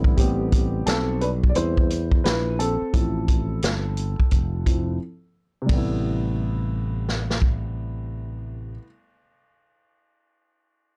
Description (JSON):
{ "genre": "hip hop, jazz-hop", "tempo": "87 BPM", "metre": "4/4", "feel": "swing 63% on 16ths", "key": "A minor", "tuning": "A4 = 440 Hz", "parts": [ { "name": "dark grand piano", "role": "accompaniment", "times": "0.0-8.9 s", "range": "C3 to D5", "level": "-30 LUFS", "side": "equal", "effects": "none" }, { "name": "sustaining fretless electric bass", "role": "bass", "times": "0.0-8.8 s", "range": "F1 to E2", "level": "-29 LUFS", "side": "equal", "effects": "tube saturation" }, { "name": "vintage drum kit", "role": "drums", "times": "0.0-7.6 s", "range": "hi-hat, kick drum, ride cymbal, snare drum", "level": "-24 LUFS", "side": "equal", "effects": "none" } ], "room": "little or no reverb", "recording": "dry, gritty hardware recording, cassette tape", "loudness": "-23 LUFS", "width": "mono", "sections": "0.2-5.7 A section; 5.7-8.5 B section", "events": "grand piano solo 0.2-5.7; break 5.0-5.7", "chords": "0.2 Am9; 2.9 Fmaj9; 5.7 Am9" }